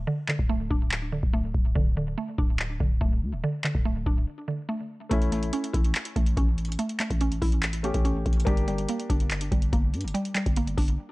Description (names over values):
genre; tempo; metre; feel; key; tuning
hip hop, trap; 143 BPM; 4/4; half-time; unclear; A4 = 440 Hz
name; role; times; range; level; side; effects
mallet-like synth pluck; arpeggios; 0.0-11.1 s; D3 to E4; -31 LUFS; right 1 dB; chorus, low-pass filter, tape echo
growling 808-style bass; bass; 0.0-11.0 s; D1 to G2; -30 LUFS; equal; none
booming analog drum machine; drums; 0.3-11.0 s; handclaps, hi-hat, kick drum; -25 LUFS; equal; none
felt-muted upright piano; accompaniment; 5.1-11.1 s; A3 to G4; -34 LUFS; left 4 dB; low-pass filter
room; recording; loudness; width
little or no reverb; dry, gritty hardware recording, transformer saturation; -24 LUFS; side -21 dB against mid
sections
0.0-11.1 A section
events
break 0.0-5.1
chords
0.0 D5; 5.1 A; 8.5 Gm